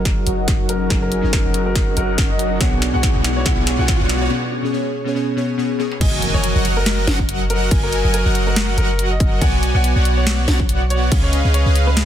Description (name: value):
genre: future bass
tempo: 141 BPM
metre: 4/4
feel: swing 56% on 16ths, half-time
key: F# major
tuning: A4 = 441 Hz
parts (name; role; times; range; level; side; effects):
- clear grand piano; melody; 0.0-12.1 s; A#4 to F#5; -26 LUFS; left 2 dB; sidechain pumping, low-pass filter, ping-pong delay
- glassy digital keys; accompaniment; 0.0-6.0 s; B2 to C#6; -23 LUFS; left 1 dB; chorus, sidechain pumping, tape echo
- airy breathy pad; sustained chords; 0.0-4.3 s; F#3 to A#4; -32 LUFS; left 2 dB; none
- soft supersaw; riff; 0.0-12.1 s; F#3 to G#5; -23 LUFS; right 1 dB; sidechain pumping, low-pass filter
- warm 808-style bass; bass; 0.0-12.1 s; F#1 to C#2; -19 LUFS; equal; sidechain pumping
- riser and impact; sound effects; 1.8-7.7 s; none; -28 LUFS; right 1 dB; none
- electronic kick drum; drums; 0.1-11.2 s; none; -19 LUFS; equal; none
- trap drum kit; drums; 0.1-12.1 s; crash cymbal, hi-hat, snare drum, toms; -23 LUFS; equal; high-pass filter on hats, soft clipping on snare, high-pass filter on snare, high-pass filter on toms, high-pass filter on cymbals, high-pass filter on room
- airy dreamy lead; arpeggios; 6.0-12.1 s; E#5 to G#5; -30 LUFS; right 1 dB; chorus, sidechain pumping
room: digital ambience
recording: dense, heavily limited modern master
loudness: -15 LUFS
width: side -10 dB against mid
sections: 0.0-6.0 A section; 6.0-12.1 B section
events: build-up 0.0-6.0; drum fill 0.0-4.3, 5.8; filter sweep on supersaw synth 0.0-6.0; filter sweep on grand piano 0.0-6.0; riser 1.8-4.3; break 4.3-6.0; drop 6.0-12.1; impact 6.0-7.7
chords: 0.0 F#6; 2.6 Bm6; 4.3 C#5; 6.0 F#6; 9.4 Bm6; 11.1 C#7